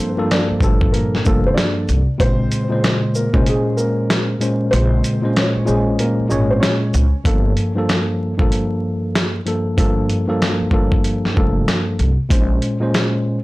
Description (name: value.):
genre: hip hop, boom-bap hip-hop.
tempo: 95 BPM.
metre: 4/4.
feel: swing 63% on 16ths.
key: G minor.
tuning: A4 = 440 Hz.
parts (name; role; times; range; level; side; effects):
dark upright piano; melody; 0.0-6.9 s; Ab3 to D5; -23 LUFS; equal; tape echo.
mellow tine electric piano; accompaniment; 0.0-13.4 s; G2 to Db5; -18 LUFS; equal; medium stereo tremolo, cassette tape.
dusty soul sampler-style drum kit; drums; 0.3-13.1 s; hi-hat, kick drum, shaker, snare drum; -18 LUFS; equal; vintage 12-bit sampler grit.
upright bass; bass; 0.5-12.6 s; F1 to Db2; -20 LUFS; equal; tube saturation.
room: light reverb.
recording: blown-out, overdriven recording, vinyl crackle, overdrive.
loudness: -15 LUFS.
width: side -20 dB against mid.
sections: 0.0-7.3 A section; 7.3-13.4 B section.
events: kick muted 4.7-7.3.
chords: 0.0 Gm9; 2.2 Bbm9; 7.3 Gm9; 12.3 Bbm9.